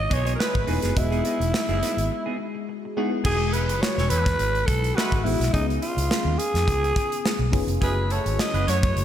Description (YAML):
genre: polished 1980s jazz-funk pop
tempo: 105 BPM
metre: 4/4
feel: swing 54% on 16ths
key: E major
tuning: A4 = 439 Hz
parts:
  - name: growling alto saxophone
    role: melody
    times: 0.0-9.0 s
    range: D#4 to D#5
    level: -26 LUFS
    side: equal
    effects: slapback echo, digital delay
  - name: FM electric piano with soft pad layer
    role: accompaniment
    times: 0.0-9.0 s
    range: G#3 to D#5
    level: -30 LUFS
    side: left 3 dB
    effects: phaser, analog chorus
  - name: vintage muted fingered electric bass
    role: bass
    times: 0.0-9.0 s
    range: E1 to F#2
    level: -25 LUFS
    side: equal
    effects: none
  - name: semi-hollow electric guitar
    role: riff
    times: 0.1-3.2 s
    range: B3 to B4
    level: -33 LUFS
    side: right 3 dB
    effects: wide subtle chorus
  - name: modern studio drum kit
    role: drums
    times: 0.1-9.0 s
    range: crash cymbal, hi-hat, kick drum, snare drum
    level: -26 LUFS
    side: equal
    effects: none
  - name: mellow horn section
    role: second line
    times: 0.4-8.8 s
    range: E3 to C#5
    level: -33 LUFS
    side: right 3 dB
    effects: slapback echo
room: moderate concert hall reverb, RT60 2.0 s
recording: big arena sound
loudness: -21 LUFS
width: side -10 dB against mid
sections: 0.0-3.2 A section; 3.2-9.0 A section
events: break 2.1-3.2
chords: 0.0 Emaj7; 5.5 C#7; 7.8 F#m7